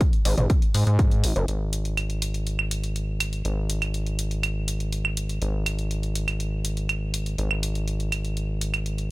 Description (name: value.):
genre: melodic techno.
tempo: 122 BPM.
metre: 4/4.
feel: straight.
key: unclear.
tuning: A4 = 440 Hz.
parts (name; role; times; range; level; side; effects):
electronic kick drum; drums; 0.0-1.1 s; none; -20 LUFS; equal; none.
punchy analog drum machine; drums; 0.0-9.1 s; claves, hi-hat, toms; -29 LUFS; right 2 dB; sidechain pumping on hats, sidechain pumping on toms, sidechain pumping on perc.
gritty driven synth bass; bass; 0.3-9.1 s; F#1 to G#2; -25 LUFS; equal; distortion, sidechain pumping.
room: digital ambience.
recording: none.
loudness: -23 LUFS.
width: side -21 dB against mid.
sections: 0.0-1.5 A section; 1.5-9.1 B section.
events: none.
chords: none.